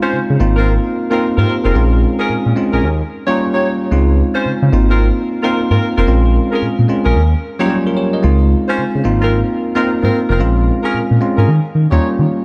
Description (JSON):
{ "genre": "R&B", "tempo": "111 BPM", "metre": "4/4", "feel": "swing 62% on 16ths", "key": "unclear", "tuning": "A4 = 439 Hz", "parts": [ { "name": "bell-like tine electric piano", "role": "accompaniment", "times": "0.0-12.4 s", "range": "Gb3 to Eb5", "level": "-19 LUFS", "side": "equal", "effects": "none" }, { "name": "mellow horn section", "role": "stabs", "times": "0.0-12.1 s", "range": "C4 to Db5", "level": "-23 LUFS", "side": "equal", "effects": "analog delay" }, { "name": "smooth gliding synth bass", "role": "bass", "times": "0.1-12.3 s", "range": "F1 to Eb3", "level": "-16 LUFS", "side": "equal", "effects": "none" } ], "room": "moderate plate reverb, RT60 3.1 s", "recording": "dreamy mix soaked in reverb", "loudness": "-14 LUFS", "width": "mono", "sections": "0.0-12.4 A section", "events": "none", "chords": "0.4 Ab69; 1.7 Bbm7; 2.8 Eb7; 3.9 Dbmaj7; 4.7 Ab69; 6.1 Bbm7; 7.2 Eb7; 8.2 Dbmaj7; 9.0 Ab69; 10.4 Bbm7; 11.5 Eb7", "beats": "0.12 0.66 1.20 | 1.75 2.29 2.83 3.37 | 3.91 4.45 4.99 5.53 | 6.07 6.61 7.15 7.69 | 8.23 8.77 9.31 9.85 | 10.39 10.93 11.47 12.02" }